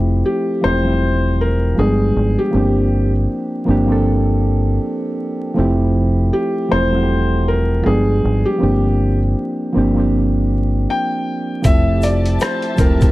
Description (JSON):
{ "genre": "lo-fi hip hop", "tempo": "79 BPM", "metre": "4/4", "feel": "swing 57% on 16ths", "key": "F major", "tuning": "A4 = 441 Hz", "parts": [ { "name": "soft electric-piano-like synth keys", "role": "accompaniment", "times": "0.0-13.1 s", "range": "F3 to A4", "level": "-18 LUFS", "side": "right 1 dB", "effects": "chorus, cassette tape, low-pass filter" }, { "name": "deep dub fingered electric bass", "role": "bass", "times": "0.0-13.1 s", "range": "E1 to Ab1", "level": "-17 LUFS", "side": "equal", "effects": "none" }, { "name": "felt-muted upright piano", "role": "melody", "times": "0.3-13.1 s", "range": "G4 to G5", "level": "-20 LUFS", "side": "left 1 dB", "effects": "low-pass filter" }, { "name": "boom bap sampler-style drum kit", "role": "drums", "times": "11.6-13.1 s", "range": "hi-hat, kick drum, rim click", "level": "-14 LUFS", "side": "equal", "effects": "none" }, { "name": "egg shaker", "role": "percussion", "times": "11.6-13.1 s", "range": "none", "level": "-42 LUFS", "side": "left 5 dB", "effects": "none" }, { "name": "dark studio string section", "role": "sustained chords", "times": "11.7-13.1 s", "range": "G4 to A5", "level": "-28 LUFS", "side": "left 2 dB", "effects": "low-pass filter" } ], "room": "light reverb, studio reverb", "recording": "dark, warm production, vinyl crackle", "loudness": "-14 LUFS", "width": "side -18 dB against mid", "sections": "0.0-13.1 A section", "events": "none", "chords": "0.0 Fmaj9; 1.8 G7b9; 2.5 C9sus4/G; 5.6 Fmaj9; 7.8 G7b9; 8.6 C9sus4/G; 11.6 Fmaj9", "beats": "0.26 1.01 1.77 | 2.53 3.29 4.05 4.81 | 5.57 6.33 7.09 7.85 | 8.61 9.37 10.13 10.89 | 11.65 12.41" }